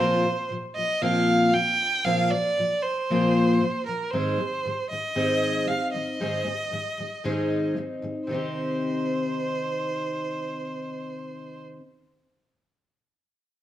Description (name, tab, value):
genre	pop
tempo	116 BPM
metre	4/4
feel	swing 55% on 16ths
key	C minor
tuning	A4 = 440 Hz
part	warm violin	melody	0.0-11.6 s	Bb4 to G5	-26 LUFS	right 2 dB	none
part	fingerpicked twelve-string acoustic guitar	accompaniment	0.0-11.8 s	Ab2 to Ab4	-26 LUFS	left 2 dB	none
room	wet large studio reverb, RT60 1.1 s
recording	band playing live in one room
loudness	-23 LUFS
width	side -12 dB against mid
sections	0.0-8.3 A section; 8.3-12.4 B section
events	none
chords	0.0 Bbsus2; 4.1 Ab; 8.3 Cm